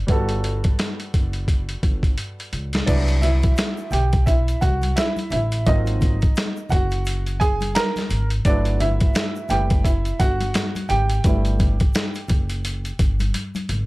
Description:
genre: hip hop, jazz-hop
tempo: 86 BPM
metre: 4/4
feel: swing 59% on 16ths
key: G major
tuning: A4 = 441 Hz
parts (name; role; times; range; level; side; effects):
- warm grand piano; accompaniment; 0.0-13.3 s; F#3 to Bb5; -25 LUFS; right 2 dB; none
- upright bass; bass; 0.0-13.9 s; F#1 to C#2; -22 LUFS; equal; none
- boom bap sampler-style drum kit; drums; 0.1-13.9 s; crash cymbal, hi-hat, kick drum, snare drum; -21 LUFS; equal; none
- egg shaker and congas; percussion; 2.9-13.9 s; none; -32 LUFS; left 1 dB; none
room: small room ambience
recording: dry, gritty hardware recording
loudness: -18 LUFS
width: side -20 dB against mid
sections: 0.0-2.9 A section; 2.9-13.9 B section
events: drum fill 2.2-2.9, 13.3-13.9; grand piano solo 2.9-13.9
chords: 0.0 Gmaj9; 2.9 Cmaj9#11; 5.7 Ab13; 8.5 Gmaj13

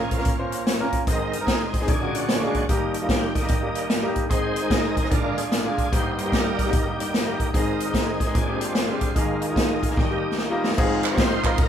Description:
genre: uptempo gospel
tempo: 148 BPM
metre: 4/4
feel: swing 65% on 8ths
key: Ab major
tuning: A4 = 440 Hz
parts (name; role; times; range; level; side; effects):
- clear baby grand piano; accompaniment; 0.0-11.7 s; G1 to C5; -26 LUFS; left 1 dB; none
- bright tonewheel organ; sustained chords; 0.0-11.7 s; G2 to Db5; -28 LUFS; right 2 dB; slow rotary speaker, overdrive, chorus vibrato
- swinging big-band drum kit; drums; 0.1-11.7 s; crash cymbal, hi-hat, kick drum, ride cymbal, snare drum; -23 LUFS; equal; none
- group handclap; percussion; 11.0-11.5 s; none; -29 LUFS; right 7 dB; none
room: light reverb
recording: band playing live in one room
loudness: -20 LUFS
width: side -9 dB against mid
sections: 0.0-10.8 A section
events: tonewheel organ solo 0.0-10.8; drum fill 10.0-10.8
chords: 0.0 Bbm; 1.1 Ab; 1.9 Bb7alt; 2.7 Eb; 4.3 Ab; 5.1 Bb7; 5.9 Eb/G; 7.5 Ab; 8.3 Bb13; 9.2 Ebsus4; 10.0 Eb; 10.8 Ab6

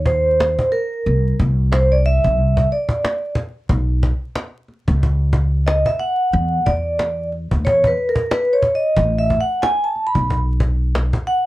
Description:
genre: hip hop, jazz-hop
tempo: 91 BPM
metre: 4/4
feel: swing 59% on 16ths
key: unclear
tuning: A4 = 440 Hz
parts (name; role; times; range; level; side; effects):
- upright bass; bass; 0.0-11.1 s; A1 to E2; -18 LUFS; equal; none
- vibraphone with medium mallets; accompaniment; 0.1-11.5 s; A#4 to B5; -18 LUFS; right 1 dB; none
- cajon; drums; 0.1-11.4 s; none; -22 LUFS; equal; vintage 12-bit sampler grit
room: light reverb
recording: dark, warm production, vinyl crackle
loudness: -16 LUFS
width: side -16 dB against mid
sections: 0.0-11.5 A section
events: vibraphone solo 0.0-11.5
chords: 0.0 N.C.; 1.1 C9; 3.7 Bsus2; 6.3 Dmaj13; 9.0 Asus2

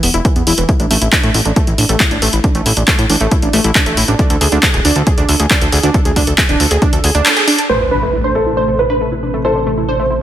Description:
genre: uplifting trance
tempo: 137 BPM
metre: 4/4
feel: straight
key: A harmonic minor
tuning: A4 = 440 Hz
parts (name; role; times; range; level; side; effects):
- analog pluck; arpeggios; 0.0-10.1 s; E3 to A4; -18 LUFS; right 2 dB; chorus, sidechain pumping, dub echo
- fat analog bass; bass; 0.0-10.2 s; D1 to A2; -16 LUFS; equal; sidechain pumping
- punchy analog drum machine; drums; 0.0-7.7 s; handclaps, hi-hat; -15 LUFS; equal; overdrive, low-pass filter on hats, low-pass filter on snare, low-pass filter on room
- electronic kick drum; drums; 0.2-6.9 s; none; -14 LUFS; equal; none
- supersaw stab; melody; 7.7-10.2 s; B4 to C5; -17 LUFS; equal; sidechain pumping, low-pass filter, dub echo
- felt-muted upright piano; second line; 7.7-10.0 s; A4 to B4; -18 LUFS; right 1 dB; dub echo
- analog string pad; sustained chords; 7.7-10.2 s; B2 to A3; -23 LUFS; right 3 dB; ensemble chorus, sidechain pumping
- impact; sound effects; 7.7-9.4 s; none; -24 LUFS; equal; none
room: light reverb, digital ambience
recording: none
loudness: -10 LUFS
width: side -11 dB against mid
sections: 0.0-7.7 A section; 7.7-10.2 B section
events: filter sweep on synth pluck 0.0-7.7; band accent 7.3; impact 7.7-9.4; filter sweep on analog synth pad 7.7-10.2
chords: 0.0 E5; 0.7 A5; 4.2 D5; 7.7 Amadd9

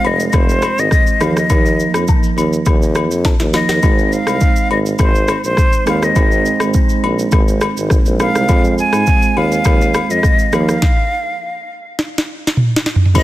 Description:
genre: afrobeats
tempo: 103 BPM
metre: 4/4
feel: straight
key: unclear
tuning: A4 = 442 Hz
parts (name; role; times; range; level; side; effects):
- breathy bright silver concert flute; melody; 0.0-13.2 s; C5 to Ab5; -18 LUFS; left 1 dB; digital delay
- tine electric piano; accompaniment; 0.0-13.2 s; E3 to C5; -20 LUFS; right 5 dB; medium tremolo
- warm tuba; bass; 0.0-13.2 s; F1 to Ab2; -18 LUFS; equal; none
- agogo bells and woodblock; percussion; 0.0-13.2 s; none; -24 LUFS; left 8 dB; none
- afro-pop drum kit; drums; 0.2-13.2 s; crash cymbal, kick drum, rim click, shaker, snare drum, toms; -14 LUFS; equal; soft clipping on snare
room: studio ambience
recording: dense, heavily limited modern master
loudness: -12 LUFS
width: side -15 dB against mid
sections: 0.0-13.2 A section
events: drum fill 3.2-3.8, 12.0-13.2; stop 10.8-13.2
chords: 0.0 Fm; 1.2 Ebsus2; 3.8 Ab; 8.5 Fm; 10.5 Ebsus2

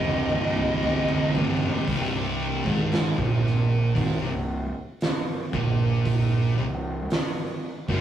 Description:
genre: stoner and doom metal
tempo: 57 BPM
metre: 4/4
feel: straight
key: C minor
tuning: A4 = 440 Hz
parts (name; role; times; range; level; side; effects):
- fuzz lead guitar; melody; 0.0-1.3 s; Eb5; -27 LUFS; equal; distortion
- thick fuzz guitar; riff; 0.0-8.0 s; C2 to C3; -27 LUFS; left 1 dB; distortion
- thick fuzz guitar; riff; 0.0-8.0 s; C2 to C3; -28 LUFS; right 5 dB; distortion
- fuzz fingered electric bass; bass; 0.0-8.0 s; C1 to Bb1; -29 LUFS; right 1 dB; overdrive, tube saturation
- oversized low-tuned drum kit; drums; 0.0-8.0 s; hi-hat, kick drum, snare drum, toms; -28 LUFS; equal; none
room: wet studio reverb, RT60 0.6 s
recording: rough rehearsal-room recording, tube saturation, studio reverb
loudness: -22 LUFS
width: side -10 dB against mid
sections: 0.0-1.9 A section; 1.9-8.0 B section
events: drum fill 0.0-1.9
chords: 0.0 Cm; 1.9 N.C.

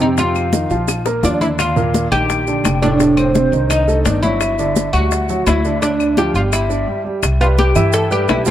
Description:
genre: Afro-Cuban jazz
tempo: 170 BPM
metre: 4/4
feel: straight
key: unclear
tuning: A4 = 440 Hz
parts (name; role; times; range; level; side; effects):
- oud; melody; 0.0-8.5 s; C4 to A4; -19 LUFS; right 1 dB; none
- breathy mellow silver concert flute; second line; 0.0-8.5 s; C5 to A5; -23 LUFS; left 4 dB; none
- warm grand piano; accompaniment; 0.0-8.5 s; A2 to F5; -20 LUFS; right 2 dB; none
- upright bass; bass; 0.0-8.5 s; F1 to G2; -19 LUFS; equal; none
- maracas; percussion; 0.0-8.5 s; none; -29 LUFS; right 9 dB; none
- bongos; percussion; 0.2-8.5 s; none; -26 LUFS; left 7 dB; none
- congas; percussion; 0.2-8.5 s; none; -22 LUFS; left 2 dB; none
- claves; percussion; 0.4-8.5 s; none; -29 LUFS; left 8 dB; none
room: moderate spring reverb, RT60 2.8 s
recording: none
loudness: -13 LUFS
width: side -11 dB against mid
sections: 0.0-7.2 A section; 7.2-8.5 B section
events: drum fill 0.9-1.6; break 6.9-7.2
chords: 0.2 F7sus4; 0.9 Bb; 1.6 Ebmaj7; 3.0 F9; 4.4 G5; 5.8 Dm; 6.5 G5; 7.2 Cmaj7

